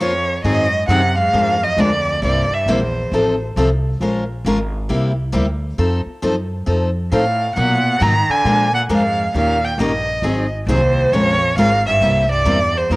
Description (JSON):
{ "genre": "acoustic string swing (jazz manouche)", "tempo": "135 BPM", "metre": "4/4", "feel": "swing 63% on 8ths", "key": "unclear", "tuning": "A4 = 441 Hz", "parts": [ { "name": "dark violin", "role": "melody", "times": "0.0-3.4, 7.1-13.0 s", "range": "Bb4 to A#5", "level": "-17 LUFS", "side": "right 1 dB", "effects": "cassette tape" }, { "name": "rich cello", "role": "second line", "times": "0.0-3.1, 7.1-13.0 s", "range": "Eb2 to D#3", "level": "-24 LUFS", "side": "right 2 dB", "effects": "none" }, { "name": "picked steel-string acoustic guitar", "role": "accompaniment", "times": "0.0-13.0 s", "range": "B2 to C5", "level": "-20 LUFS", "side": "left 1 dB", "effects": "none" }, { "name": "upright bass", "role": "bass", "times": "0.4-13.0 s", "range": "Ab1 to B2", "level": "-20 LUFS", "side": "equal", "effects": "none" } ], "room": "moderate spring reverb, RT60 1.5 s, small room ambience", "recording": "home recording on cassette", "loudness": "-15 LUFS", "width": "side -22 dB against mid", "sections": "0.5-13.0 A section", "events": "break 0.0-0.5", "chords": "0.5 Ab7; 1.3 Bb7; 2.2 C7; 3.1 F7; 4.0 Bbm7; 4.9 C7; 5.8 F7; 7.6 Bmaj7; 8.5 Bb7; 9.3 Eb7; 10.2 Ab7; 11.1 Bbm7; 12.0 C7" }